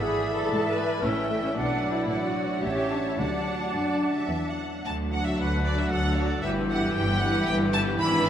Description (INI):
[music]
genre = quick classical-period movement for symphony orchestra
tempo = 107-116 BPM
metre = 3/4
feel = straight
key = D major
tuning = A4 = 440 Hz
[part]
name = rich studio violin section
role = melody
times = 0.0-8.3 s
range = C#5 to B5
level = -32 LUFS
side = right 1 dB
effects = none
[part]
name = bright concert flute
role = second line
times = 0.0-4.6 s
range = E5 to F#5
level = -35 LUFS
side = right 4 dB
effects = none
[part]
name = warm oboe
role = second line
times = 0.0-8.3 s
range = E4 to E5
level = -34 LUFS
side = left 3 dB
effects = none
[part]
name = warm studio violin section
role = second line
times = 0.0-8.3 s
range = E4 to F#5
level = -35 LUFS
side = right 1 dB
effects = none
[part]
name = rich studio viola section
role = accompaniment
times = 0.0-8.3 s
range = E3 to B4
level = -30 LUFS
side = left 1 dB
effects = none
[part]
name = mellow French horn section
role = sustained chords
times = 0.0-8.3 s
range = E3 to E4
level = -31 LUFS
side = equal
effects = none
[part]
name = clear studio double bass section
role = bass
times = 0.0-8.3 s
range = G1 to G#2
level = -32 LUFS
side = equal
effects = none
[part]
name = rich studio cello section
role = bass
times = 0.0-8.3 s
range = D2 to G#3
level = -32 LUFS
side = equal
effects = none
[part]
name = timpani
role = percussion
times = 3.2-4.0 s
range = D3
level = -41 LUFS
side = right 1 dB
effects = none
[sound]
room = wet cathedral reverb, RT60 5.0 s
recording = in a vast, echoing space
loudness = -24 LUFS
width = side -9 dB against mid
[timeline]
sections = 0.0-4.9 A section; 4.9-8.3 B section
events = none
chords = 0.0 E7/G#; 1.0 A; 1.6 Bm; 2.1 D/A; 2.6 A7; 3.2 D; 6.4 Em/G